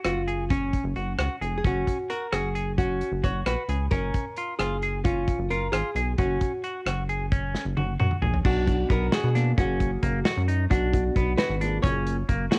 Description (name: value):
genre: progressive instrumental, band music in an uneven meter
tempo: 265 BPM (eighths)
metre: 5/8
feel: straight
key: F# major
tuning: A4 = 440 Hz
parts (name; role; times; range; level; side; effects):
- archtop guitar, miked and amplified; melody; 0.0-12.6 s; C#4 to C#5; -32 LUFS; equal; cassette tape
- natural country drum kit; drums; 0.0-12.6 s; crash cymbal, hi-hat, kick drum, rim click, snare drum, toms; -29 LUFS; equal; cassette tape
- semi-hollow electric guitar; arpeggios; 0.1-12.6 s; A#3 to G#4; -34 LUFS; equal; spring reverb, cassette tape
- rubbery square bass; bass; 0.1-12.5 s; E#1 to B2; -30 LUFS; equal; none
- dark grand piano; accompaniment; 8.7-12.6 s; A#3 to E#5; -34 LUFS; equal; cassette tape
room: light reverb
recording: home recording on cassette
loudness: -26 LUFS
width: mono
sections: 0.0-8.4 A section; 8.4-12.6 B section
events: drum fill 7.5-8.4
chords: 0.0 F#5; 1.6 F#sus2; 3.9 C#6/F#; 6.2 F#sus2; 8.4 Bm; 9.6 F#maj7; 10.7 Bm; 11.8 F#maj7